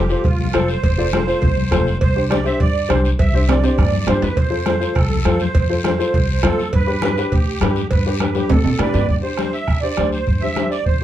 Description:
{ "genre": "latin, cumbia", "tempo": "203 BPM", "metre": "4/4", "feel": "straight", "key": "unclear", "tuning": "A4 = 440 Hz", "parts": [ { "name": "musette accordion", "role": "second line", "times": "0.0-11.0 s", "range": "F4 to E5", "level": "-24 LUFS", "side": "right 6 dB", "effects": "none" }, { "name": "upright bass", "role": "bass", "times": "0.0-11.0 s", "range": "F1 to C3", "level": "-20 LUFS", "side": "equal", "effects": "none" }, { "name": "dark upright piano", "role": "accompaniment", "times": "0.1-11.0 s", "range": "D4 to D5", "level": "-21 LUFS", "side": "left 2 dB", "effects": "none" }, { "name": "guiro", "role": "percussion", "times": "0.1-11.0 s", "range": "none", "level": "-34 LUFS", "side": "left 7 dB", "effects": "none" }, { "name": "bombo", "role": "percussion", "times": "0.2-11.0 s", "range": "none", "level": "-20 LUFS", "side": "right 1 dB", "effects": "none" }, { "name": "cowbell and timbales", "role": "percussion", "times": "0.2-9.0 s", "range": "none", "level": "-26 LUFS", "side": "right 4 dB", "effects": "none" }, { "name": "congas", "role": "percussion", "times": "0.3-11.0 s", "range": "none", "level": "-26 LUFS", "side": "left 3 dB", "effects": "none" } ], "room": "light reverb", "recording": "dark, warm production", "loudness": "-15 LUFS", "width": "side -12 dB against mid", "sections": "0.0-9.1 A section; 9.1-11.0 B section", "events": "drum fill 3.5-4.4, 8.2-9.1; accordion solo 9.1-11.0", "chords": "0.0 F; 2.0 Csus2; 4.4 F; 6.7 G; 9.1 Gsus4" }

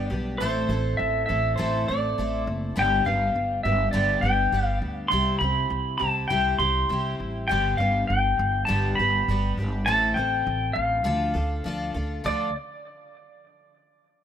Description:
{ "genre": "folk rock and heartland rock", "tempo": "101 BPM", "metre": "4/4", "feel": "straight", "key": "D dorian", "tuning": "A4 = 439 Hz", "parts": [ { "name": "pedal steel guitar", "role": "melody", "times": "0.0-12.5 s", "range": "C5 to C6", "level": "-25 LUFS", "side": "equal", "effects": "tape echo" }, { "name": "picked twelve-string acoustic guitar", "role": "accompaniment", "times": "0.0-12.5 s", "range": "G2 to A4", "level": "-30 LUFS", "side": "left 2 dB", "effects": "none" }, { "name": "upright bass", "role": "bass", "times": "0.0-12.5 s", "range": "F#1 to D2", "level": "-27 LUFS", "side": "right 1 dB", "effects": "none" } ], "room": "light reverb", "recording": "rough home demo mix", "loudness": "-22 LUFS", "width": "side -9 dB against mid", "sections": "0.0-12.2 A section; 12.2-14.2 B section", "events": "none", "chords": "0.4 Am; 2.8 G; 5.1 C; 7.5 G; 9.9 Am; 11.1 Dm" }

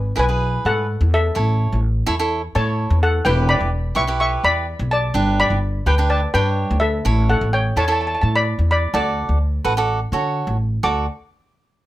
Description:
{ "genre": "calypso", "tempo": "127 BPM", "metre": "4/4", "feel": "straight", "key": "D major", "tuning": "A4 = 439 Hz", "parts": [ { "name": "steel pan", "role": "melody", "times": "0.0-11.1 s", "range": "A4 to D6", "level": "-21 LUFS", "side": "left 1 dB", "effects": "none" }, { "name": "upright bass", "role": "bass", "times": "0.0-11.1 s", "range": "E1 to D3", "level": "-19 LUFS", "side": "equal", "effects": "none" }, { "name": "cavaquinho", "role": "accompaniment", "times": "0.2-11.1 s", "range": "D4 to D5", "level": "-22 LUFS", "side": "right 3 dB", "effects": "none" } ], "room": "light reverb", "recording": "none", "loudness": "-16 LUFS", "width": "side -15 dB against mid", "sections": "0.0-10.8 A section; 10.8-11.9 B section", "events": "none", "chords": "0.0 E/G#; 1.4 A; 3.3 Em; 5.2 G; 7.1 A; 8.9 D" }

